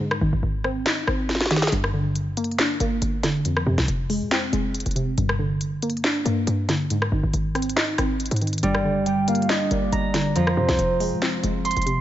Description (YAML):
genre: hip hop, trap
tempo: 139 BPM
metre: 4/4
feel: half-time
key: G phrygian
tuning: A4 = 440 Hz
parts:
  - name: warbly dusty pluck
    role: accompaniment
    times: 0.0-12.0 s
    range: F2 to Eb4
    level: -25 LUFS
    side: equal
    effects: chorus, low-pass filter
  - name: trap drum kit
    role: drums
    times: 0.1-12.0 s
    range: handclaps, hi-hat, rim click, snare drum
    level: -26 LUFS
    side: equal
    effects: none
  - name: short 808-style bass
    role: bass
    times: 0.2-12.0 s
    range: F1 to C3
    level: -26 LUFS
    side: equal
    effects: none
  - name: soft octave-layered synth lead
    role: second line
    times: 8.6-11.2 s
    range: C5 to G5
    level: -26 LUFS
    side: equal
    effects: chorus, phaser, digital delay
  - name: Celtic harp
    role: arpeggios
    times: 8.6-12.0 s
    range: F3 to C6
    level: -24 LUFS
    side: right 2 dB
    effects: low-pass filter, digital delay
room: light reverb, digital ambience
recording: nothing above 7.6 kHz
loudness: -20 LUFS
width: side -12 dB against mid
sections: 0.0-12.0 A section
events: break 0.0-1.7; drum fill 1.3-1.7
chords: 0.0 Ab; 1.7 Gm; 3.5 Fm; 5.2 Gm; 6.9 Ab; 8.6 Gm; 10.4 Fm